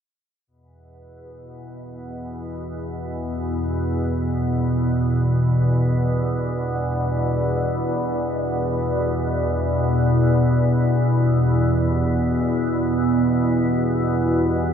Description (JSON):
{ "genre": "dark ambient drone", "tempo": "free time", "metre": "none", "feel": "none", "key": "E minor", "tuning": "A4 = 440 Hz", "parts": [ { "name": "deep dark ambient pad", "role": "sustained chords", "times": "1.6-14.7 s", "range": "E4 to D5", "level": "-28 LUFS", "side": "equal", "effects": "chorus, built-in reverb" }, { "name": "organ-like drone", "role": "drone", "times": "2.0-14.7 s", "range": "E2 to B2", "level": "-20 LUFS", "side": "equal", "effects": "ensemble chorus, built-in reverb, phaser" } ], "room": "wet cathedral reverb, RT60 7.7 s", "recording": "none", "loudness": "-19 LUFS", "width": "side -8 dB against mid", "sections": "0.5-14.7 A section", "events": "fade-in on ambient pad 0.5-14.7", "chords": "0.5 Em" }